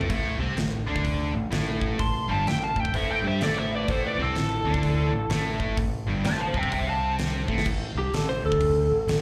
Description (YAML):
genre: blues rock power trio and southern rock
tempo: 127 BPM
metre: 4/4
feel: swing 62% on 8ths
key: A minor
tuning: A4 = 440 Hz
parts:
  - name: overdriven electric guitar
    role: riff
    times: 0.0-7.7 s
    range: G2 to G4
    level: -32 LUFS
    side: equal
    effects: slapback echo
  - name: growling fingered electric bass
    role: bass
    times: 0.0-9.2 s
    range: G1 to G2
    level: -31 LUFS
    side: equal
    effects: overdrive
  - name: huge arena drum kit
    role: drums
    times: 0.0-9.2 s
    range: crash cymbal, hi-hat, kick drum, snare drum, toms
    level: -33 LUFS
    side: equal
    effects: none
  - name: biting lead guitar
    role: melody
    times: 2.0-7.1 s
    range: A4 to C6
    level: -31 LUFS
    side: equal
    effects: wah, overdrive
  - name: lightly driven lead guitar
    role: second line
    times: 2.0-9.2 s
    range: E4 to A5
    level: -32 LUFS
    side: equal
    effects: slapback echo
room: small room ambience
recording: live gig heard through the venue's PA, club reverb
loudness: -26 LUFS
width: mono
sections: 0.0-7.7 A section; 7.7-9.2 B section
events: drum fill 7.4; lead electric guitar solo 7.7-9.2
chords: 0.0 Am; 7.7 N.C.